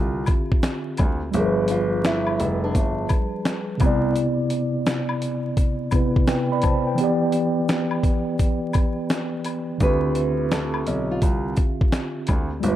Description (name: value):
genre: lo-fi hip hop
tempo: 85 BPM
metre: 4/4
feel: swing 66% on 16ths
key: D dorian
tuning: A4 = 443 Hz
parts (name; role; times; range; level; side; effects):
- nylon-string guitar; melody; 0.0-4.1, 9.8-12.6 s; D4 to B4; -29 LUFS; right 2 dB; none
- mellow tine electric piano; accompaniment; 0.0-12.8 s; C3 to B5; -23 LUFS; equal; medium stereo tremolo
- warm grand piano; bass; 0.0-4.1, 9.8-12.8 s; F1 to D2; -26 LUFS; equal; none
- dusty soul sampler-style drum kit; drums; 0.3-12.8 s; finger snaps, hi-hat, kick drum, snare drum; -22 LUFS; equal; none
- tube shaker and woodblock; percussion; 0.3-12.8 s; none; -36 LUFS; left 5 dB; none
room: light reverb, studio reverb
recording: vinyl crackle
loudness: -20 LUFS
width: side -12 dB against mid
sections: 0.0-9.8 A section; 9.8-12.8 B section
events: none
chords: 0.0 Dm11; 1.3 G7b9; 3.8 Cmaj9; 7.0 Em7; 9.8 Dm11